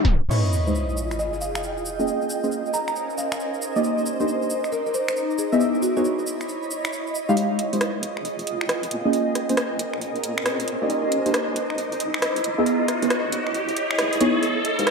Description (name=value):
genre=UK garage, two-step garage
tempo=136 BPM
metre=4/4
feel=swing 64% on 16ths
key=F minor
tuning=A4 = 438 Hz
part: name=ethereal airy pad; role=sustained chords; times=0.0-14.9 s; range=Eb5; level=-30 LUFS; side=right 2 dB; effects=ensemble chorus, built-in reverb, sidechain pumping
part: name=garage drum kit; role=drums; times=0.0-14.9 s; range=crash cymbal, finger snaps, hi-hat, rim click, shaker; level=-29 LUFS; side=equal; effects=overdrive, high-pass filter on hats, studio reverb, high-pass filter on snare, high-pass filter on cymbals, high-pass filter on perc
part: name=granular cloud pad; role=texture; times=0.0-14.9 s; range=Db4 to D6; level=-29 LUFS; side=equal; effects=built-in reverb, analog chorus, sidechain pumping
part: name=deep mellow chord stab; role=stabs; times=0.1-14.8 s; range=Ab3 to F5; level=-23 LUFS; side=equal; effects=lush chorus, diffuse ambient delay
part: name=deep soft wobble bass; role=bass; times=0.1-0.3, 7.7-14.8 s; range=F1 to Bb2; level=-35 LUFS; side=equal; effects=chorus, tube saturation, sidechain pumping, high-pass filter
part: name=sub drop and riser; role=sound effects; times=0.3-2.1, 9.8-14.9 s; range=none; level=-28 LUFS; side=equal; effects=none
part: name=buzzing marimba with soft mallets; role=melody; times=1.2-6.0 s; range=Gb4 to Bb5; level=-29 LUFS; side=right 1 dB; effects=diffuse ambient delay
room=wet lush hall reverb, RT60 1.8 s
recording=dreamy mix soaked in reverb, tape stop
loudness=-21 LUFS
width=side -4 dB against mid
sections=0.3-7.4 A section; 7.4-14.9 B section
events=tape stop 0.0-0.3; impact 0.3-2.1; filter sweep on ambient pad 0.3-7.4; build-up 7.4-14.9; riser 9.8-14.9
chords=0.3 Fm9; 1.9 Bbm9; 3.8 Cm9; 5.4 Dbm9; 7.4 Fm9; 8.9 Bbm9; 10.9 Cm9; 12.4 Dbm9